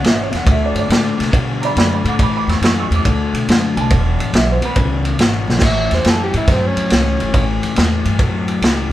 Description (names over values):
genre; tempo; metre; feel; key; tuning
electric blues shuffle; 140 BPM; 4/4; swing 67% on 8ths; A mixolydian; A4 = 435 Hz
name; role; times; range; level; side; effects
warm upright piano; accompaniment; 0.0-5.5 s; B4 to E6; -23 LUFS; right 5 dB; none
overdriven semi-hollow guitar; riff; 0.0-8.9 s; E2 to B3; -20 LUFS; left 5 dB; spring reverb
upright bass; bass; 0.0-8.9 s; E1 to C3; -19 LUFS; right 1 dB; none
vintage drum kit; drums; 0.0-8.8 s; crash cymbal, kick drum, ride cymbal, snare drum; -16 LUFS; equal; none
overdriven harmonica; melody; 5.7-7.5 s; C4 to E5; -20 LUFS; right 2 dB; none
room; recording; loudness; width
light reverb; band playing live in one room; -13 LUFS; side -14 dB against mid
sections
0.0-5.6 A section; 5.6-8.9 A section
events
drum fill 5.4; harmonica solo 5.6-8.9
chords
0.5 D; 2.2 Aadd9; 3.0 D7; 3.9 E; 5.6 A7